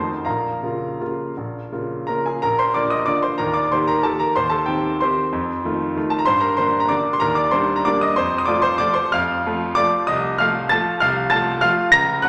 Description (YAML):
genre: classical, piano waltz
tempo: 161-202 BPM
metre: 3/4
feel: rubato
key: unclear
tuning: A4 = 440 Hz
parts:
  - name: clear grand piano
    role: solo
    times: 0.0-12.3 s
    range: Bb1 to Bb6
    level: -20 LUFS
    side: equal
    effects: none
room: wet concert hall reverb, RT60 1.9 s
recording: none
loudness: -20 LUFS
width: mono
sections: 0.0-2.4 A section; 2.4-12.3 B section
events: none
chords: 0.3 Bbm; 2.4 Bb; 3.4 Eb; 4.4 Cm/Eb; 5.3 F7; 6.3 Gm; 7.2 Ebmaj7; 8.2 F; 10.1 F7/C